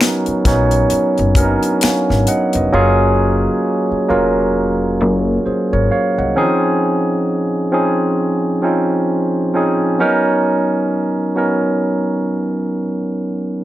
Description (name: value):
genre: R&B, neo-soul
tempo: 66 BPM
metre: 4/4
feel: swing 59% on 16ths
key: B lydian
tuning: A4 = 443 Hz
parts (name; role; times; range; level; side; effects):
- barky tine electric piano; accompaniment; 0.0-13.6 s; D#3 to G#5; -14 LUFS; right 1 dB; overdrive, plate reverb
- tight funk drum kit; drums; 0.0-2.7 s; finger snaps, hi-hat, kick drum, snare drum; -17 LUFS; left 1 dB; none
- upright bass; bass; 0.3-6.3 s; E#1 to C2; -18 LUFS; left 1 dB; none
room: moderate studio reverb, RT60 0.5 s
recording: none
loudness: -14 LUFS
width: side -14 dB against mid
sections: 0.0-13.6 A section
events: none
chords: 0.0 Bmaj9; 2.7 F#maj9; 6.4 C#maj9; 10.0 Bmaj9